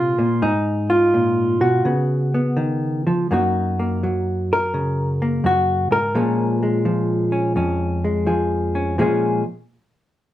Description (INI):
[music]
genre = solo jazz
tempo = 84 BPM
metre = 4/4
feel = swing 67% on 8ths, rubato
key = Bb minor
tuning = A4 = 440 Hz
[part]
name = hollow-body jazz guitar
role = solo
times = 0.0-9.4 s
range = F2 to Bb4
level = -17 LUFS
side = equal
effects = none
[sound]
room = moderate club ambience, RT60 0.5 s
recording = small room ambience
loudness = -17 LUFS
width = side -13 dB against mid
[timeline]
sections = 0.0-3.3 A section; 3.3-9.0 B section; 9.0-10.3 C section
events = none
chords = 0.4 Abm; 1.9 Db9; 3.3 Gb6; 6.1 Bbm7